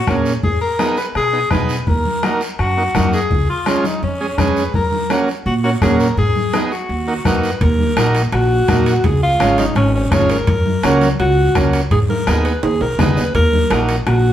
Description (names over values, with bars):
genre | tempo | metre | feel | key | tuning
latin, cumbia | 167 BPM | 4/4 | straight | Eb minor | A4 = 441 Hz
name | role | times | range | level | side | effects
breathy tenor saxophone | second line | 0.0-7.4 s | Db4 to Cb5 | -20 LUFS | left 2 dB | slapback echo
combo organ | accompaniment | 0.1-14.0 s | Ab3 to Ab4 | -20 LUFS | right 2 dB | none
upright bass | bass | 0.1-14.3 s | Ab1 to Cb3 | -18 LUFS | equal | none
bombo | percussion | 0.1-14.2 s | none | -20 LUFS | left 1 dB | none
congas | percussion | 0.1-14.2 s | none | -24 LUFS | equal | none
guiro | percussion | 0.1-14.3 s | none | -32 LUFS | right 3 dB | none
breathy alto saxophone | melody | 7.3-14.3 s | Db4 to Db5 | -18 LUFS | equal | none
timbales | percussion | 7.6-14.2 s | none | -28 LUFS | right 4 dB | none
room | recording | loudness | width
wet studio reverb, RT60 0.8 s | heard from further back in the room | -14 LUFS | side -11 dB against mid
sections
0.0-7.6 A section; 7.6-14.3 B section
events
tenor saxophone solo 0.0-7.6; drum fill 12.6-13.4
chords
0.4 Abm; 1.9 Ebm; 3.3 Db; 4.7 Gb; 6.2 Abm; 6.9 Ebm; 9.0 Db; 10.5 Gb; 11.9 Abm; 13.4 Ebm